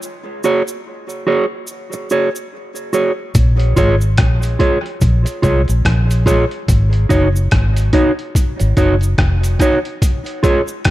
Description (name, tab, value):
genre	dub reggae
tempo	72 BPM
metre	4/4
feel	swing 59% on 16ths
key	unclear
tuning	A4 = 440 Hz
part	cabasa	percussion	0.0-10.8 s	none	-31 LUFS	right 2 dB	none
part	mellow electric guitar	accompaniment	0.4-10.6 s	Eb4 to Db5	-18 LUFS	right 2 dB	dub echo
part	trip hop sampler-style drum kit	drums	3.3-10.9 s	hi-hat, kick drum, rim click	-16 LUFS	equal	overdrive
part	vintage muted fingered electric bass	bass	3.4-9.6 s	F1 to C2	-14 LUFS	equal	none
room	digital ambience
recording	dark, warm production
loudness	-13 LUFS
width	side -16 dB against mid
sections	0.0-10.9 A section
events	break 0.0-3.4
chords	0.0 Ab7sus4; 3.4 Bbm7; 6.7 Ab7sus4; 10.0 Fm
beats	| 0.02 0.85 1.69 2.52 | 3.35 4.18 5.02 5.85 | 6.68 7.52 8.35 9.18 | 10.01 10.85